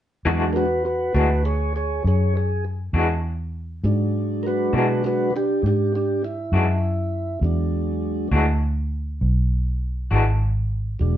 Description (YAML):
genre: slow blues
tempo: 67 BPM (dotted quarters)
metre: 12/8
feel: straight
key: E mixolydian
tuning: A4 = 442 Hz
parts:
  - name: electric guitar through a small old amp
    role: accompaniment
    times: 0.3-10.3 s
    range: E3 to F#4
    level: -24 LUFS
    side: left 3 dB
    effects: tremolo
  - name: mellow tonewheel organ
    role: sustained chords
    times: 0.3-11.2 s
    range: F#3 to C#5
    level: -23 LUFS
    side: right 1 dB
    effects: slow rotary speaker
  - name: vintage muted fingered electric bass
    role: bass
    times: 0.3-11.2 s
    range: E1 to B2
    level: -22 LUFS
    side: equal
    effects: none
room: moderate studio reverb, RT60 0.8 s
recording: band playing live in one room, nothing above 10.5 kHz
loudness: -20 LUFS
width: side -11 dB against mid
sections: 0.3-11.2 A section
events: tonewheel organ solo 0.3-11.2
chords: 0.3 E9